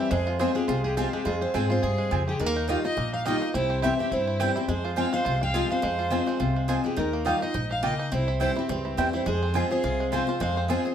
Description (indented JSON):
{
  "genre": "bluegrass",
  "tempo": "210 BPM",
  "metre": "4/4",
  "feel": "swing 56% on 8ths",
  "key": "F minor",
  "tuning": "A4 = 440 Hz",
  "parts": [
    { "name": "bluegrass banjo", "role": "melody", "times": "0.0-10.9 s", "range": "F3 to Ab4", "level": "-33 LUFS", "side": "right 4 dB", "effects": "none" },
    { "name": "picked steel-string acoustic guitar", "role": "melody", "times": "0.0-10.9 s", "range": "G4 to G5", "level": "-30 LUFS", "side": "equal", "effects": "none" },
    { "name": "rich fiddle", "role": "second line", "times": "0.0-10.9 s", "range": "C4 to F5", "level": "-34 LUFS", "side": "left 1 dB", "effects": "none" },
    { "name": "picked acoustic archtop guitar", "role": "accompaniment", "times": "0.0-10.9 s", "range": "F2 to F4", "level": "-29 LUFS", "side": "left 3 dB", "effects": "none" },
    { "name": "upright bass", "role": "bass", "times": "0.1-10.8 s", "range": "Bb1 to Ab2", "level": "-30 LUFS", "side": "equal", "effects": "none" },
    { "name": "mandolin", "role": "stabs", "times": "0.4-10.8 s", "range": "Bb3 to Ab5", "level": "-32 LUFS", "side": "right 5 dB", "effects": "none" }
  ],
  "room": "moderate studio reverb, RT60 0.9 s",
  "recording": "none",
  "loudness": "-23 LUFS",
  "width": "side -9 dB against mid",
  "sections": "0.0-7.0 A section; 7.0-10.9 A section",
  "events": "none",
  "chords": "0.1 Fm; 2.4 Ebadd9; 3.5 C; 4.7 Fm; 7.0 Ebadd9; 8.1 C; 9.3 Fm",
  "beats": "| 0.12 0.40 0.69 0.97 | 1.26 1.54 1.83 2.12 | 2.40 2.69 2.97 3.26 | 3.54 3.83 4.12 4.40 | 4.69 4.97 5.26 5.54 | 5.83 6.12 6.40 6.69 | 6.97 7.26 7.55 7.83 | 8.12 8.41 8.69 8.98 | 9.27 9.55 9.84 10.12 | 10.41 10.70"
}